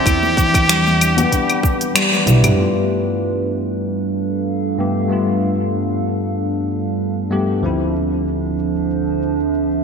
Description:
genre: organic downtempo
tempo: 95 BPM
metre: 4/4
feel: swing 54% on 16ths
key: G mixolydian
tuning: A4 = 436 Hz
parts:
  - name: trumpet with straight mute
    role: melody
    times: 0.0-2.0 s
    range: G4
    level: -19 LUFS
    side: equal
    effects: ping-pong delay
  - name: warbly tape-like pad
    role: sustained chords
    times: 0.0-9.8 s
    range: D3 to F5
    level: -22 LUFS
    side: right 3 dB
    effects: chorus, built-in reverb, vintage 12-bit sampler grit, sidechain pumping
  - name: handpan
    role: arpeggios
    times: 0.1-2.4 s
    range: E3 to E4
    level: -21 LUFS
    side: left 1 dB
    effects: ping-pong delay
  - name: upright bass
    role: bass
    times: 0.1-2.5 s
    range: B1 to E2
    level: -19 LUFS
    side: equal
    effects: sidechain pumping
  - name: deep house drum kit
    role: drums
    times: 0.1-9.8 s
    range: claves, finger snaps, hi-hat, shaker, toms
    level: -18 LUFS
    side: left 1 dB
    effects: low-pass filter on hats, studio reverb, low-pass filter on perc, low-pass filter on snare, low-pass filter on toms
  - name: electronic kick drum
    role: drums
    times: 0.1-1.8 s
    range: none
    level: -19 LUFS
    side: equal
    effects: studio reverb
  - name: congas and bongos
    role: percussion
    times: 0.2-2.6 s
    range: none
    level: -30 LUFS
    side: left 1 dB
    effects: none
  - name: bell-like tine electric piano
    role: accompaniment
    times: 2.6-9.8 s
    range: D2 to G4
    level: -20 LUFS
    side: left 2 dB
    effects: analog chorus, sidechain pumping, low-pass filter, ping-pong delay
room: wet lush hall reverb, RT60 2.3 s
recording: bright 1980s-style digital production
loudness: -15 LUFS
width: side -6 dB against mid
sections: 0.0-2.6 A section; 2.6-9.8 B section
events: band accent 2.0-2.3; drum fill 2.1-2.6; filter sweep on tine electric piano 2.6-9.8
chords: 0.1 Em7; 2.6 G7; 7.6 Dm7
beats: | 0.06 0.69 1.32 1.96 | 2.59 3.22 3.85 4.48 | 5.11 5.75 6.38 7.01 | 7.64 8.27 8.90 9.53

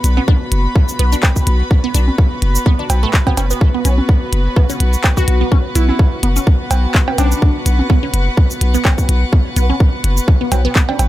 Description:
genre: minimal techno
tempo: 126 BPM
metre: 4/4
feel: swing 55% on 16ths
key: unclear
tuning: A4 = 440 Hz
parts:
  - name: punchy sub bass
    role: bass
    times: 0.0-11.1 s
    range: F#1 to B1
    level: -13 LUFS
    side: equal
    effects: sidechain pumping
  - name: minimal click drum kit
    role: drums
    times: 0.0-11.1 s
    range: handclaps, hi-hat, shaker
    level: -19 LUFS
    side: left 1 dB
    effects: none
  - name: clear studio string section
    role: texture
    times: 0.0-11.1 s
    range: B3 to B5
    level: -23 LUFS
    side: equal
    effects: sidechain pumping
  - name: resonant blip pluck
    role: riff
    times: 0.2-10.9 s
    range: F#3 to D4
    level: -24 LUFS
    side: right 2 dB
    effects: phaser, sidechain pumping, tape echo
  - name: congas and cowbell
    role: percussion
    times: 0.2-11.1 s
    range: none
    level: -23 LUFS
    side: right 3 dB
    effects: digital delay
  - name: electronic kick drum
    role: drums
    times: 0.3-10.9 s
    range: none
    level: -13 LUFS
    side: equal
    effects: none
  - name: glassy wavetable pluck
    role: melody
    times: 5.2-7.6 s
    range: D4 to F#4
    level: -22 LUFS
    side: left 1 dB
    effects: chorus, digital delay
room: light reverb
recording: none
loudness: -12 LUFS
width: side -15 dB against mid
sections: 0.0-11.1 A section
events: none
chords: 0.0 B5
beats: 0.28 0.76 1.23 | 1.71 2.18 2.66 3.14 | 3.61 4.09 4.57 5.04 | 5.52 5.99 6.47 6.95 | 7.42 7.90 8.37 8.85 | 9.33 9.80 10.28 10.76

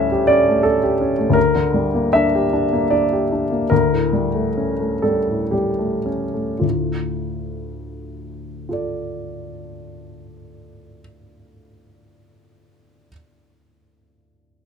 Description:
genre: classical, romantic character piece for solo piano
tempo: 52-85 BPM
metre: 3/4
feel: rubato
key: D minor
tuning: A4 = 440 Hz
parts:
  - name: warm baby grand piano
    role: solo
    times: 0.0-14.7 s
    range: D2 to E5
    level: -17 LUFS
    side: equal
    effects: none
room: light reverb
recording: close, detailed microphones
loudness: -17 LUFS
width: side -6 dB against mid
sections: 0.0-6.6 A section; 6.6-12.7 B section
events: slowing down 0.3-6.6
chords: 0.0 A7/D; 1.4 Gm/D; 3.7 A7/D; 6.6 Dm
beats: 0.65 | 1.36 2.14 2.91 | 3.70 4.57 5.53 | 6.62 7.67 8.69 | 9.68 10.68 11.69

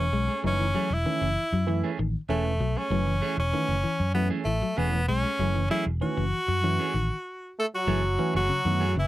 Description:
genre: afrobeat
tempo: 97 BPM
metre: 4/4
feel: straight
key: F# dorian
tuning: A4 = 440 Hz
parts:
  - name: edgy tenor saxophone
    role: melody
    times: 0.0-9.1 s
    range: A3 to A4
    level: -28 LUFS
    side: equal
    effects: none
  - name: barky tine electric piano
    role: accompaniment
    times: 0.0-8.8 s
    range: E3 to E4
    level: -32 LUFS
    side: right 7 dB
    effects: analog chorus
  - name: electric guitar at the edge of break-up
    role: arpeggios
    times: 0.0-9.1 s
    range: C#3 to G#3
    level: -31 LUFS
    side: left 4 dB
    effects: none
  - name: fingered electric bass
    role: bass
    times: 0.0-9.1 s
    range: E1 to F#2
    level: -28 LUFS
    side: equal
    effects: none
  - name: clean electric guitar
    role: stabs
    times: 0.1-9.0 s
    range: E3 to G#4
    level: -34 LUFS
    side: right 6 dB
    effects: none
  - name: bright trombone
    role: second line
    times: 7.6-9.1 s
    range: E3 to A3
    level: -32 LUFS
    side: right 1 dB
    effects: none
room: little or no reverb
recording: dry, close 1970s-style studio recording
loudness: -24 LUFS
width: side -15 dB against mid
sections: 0.0-7.9 A section; 7.9-9.1 B section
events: stop 7.3-7.9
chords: 0.0 F#m9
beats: | 0.44 1.06 1.68 2.30 | 2.92 3.54 4.16 4.78 | 5.40 6.02 6.64 7.26 | 7.88 8.50

